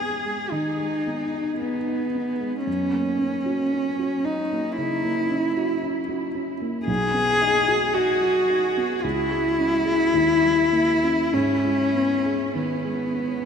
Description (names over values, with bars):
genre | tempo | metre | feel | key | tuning
classical, romantic duo for cello and grand piano | 48-57 BPM | 4/4 | rubato | G# minor | A4 = 440 Hz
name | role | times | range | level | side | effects
warm cello | melody | 0.0-13.5 s | B3 to G#4 | -21 LUFS | left 1 dB | none
dark baby grand piano | accompaniment | 0.0-13.5 s | B1 to F#4 | -28 LUFS | right 2 dB | none
room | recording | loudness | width
wet huge ambient reverb, RT60 7.2 s | in a vast, echoing space | -20 LUFS | side -7 dB against mid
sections
0.0-13.5 A section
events
none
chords
0.0 G#m; 2.7 F#; 6.9 B; 9.0 C#m; 10.1 D#7b9; 11.3 G#m